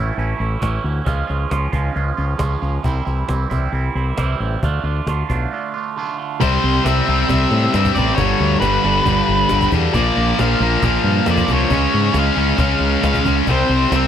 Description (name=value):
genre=quiet-loud alternative rock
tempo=136 BPM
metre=4/4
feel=straight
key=unclear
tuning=A4 = 438 Hz
part: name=twangy electric guitar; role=arpeggios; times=0.0-6.4 s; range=A2 to E#4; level=-24 LUFS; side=right 7 dB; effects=phaser
part: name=growling fingered electric bass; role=bass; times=0.0-14.1 s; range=G1 to A2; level=-19 LUFS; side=equal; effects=overdrive
part: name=cajon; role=drums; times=0.2-14.0 s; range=none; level=-25 LUFS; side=equal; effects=none
part: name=octave-fuzz lead guitar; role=melody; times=6.4-14.1 s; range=B4 to F5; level=-21 LUFS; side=equal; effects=distortion, analog delay
part: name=thick fuzz guitar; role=riff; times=6.4-14.1 s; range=G2 to C#4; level=-20 LUFS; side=right 11 dB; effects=distortion
part: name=tight distorted guitar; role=riff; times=6.4-14.1 s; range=G2 to C#4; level=-19 LUFS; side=left 14 dB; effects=distortion
room=little or no reverb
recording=none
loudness=-15 LUFS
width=side -9 dB against mid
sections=0.0-6.4 A section; 6.4-14.1 B section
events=break 5.5-6.4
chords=0.0 A; 1.1 C#; 2.8 C; 4.6 Dm; 6.4 C; 8.2 G; 9.9 Bb; 11.7 C#; 13.5 C5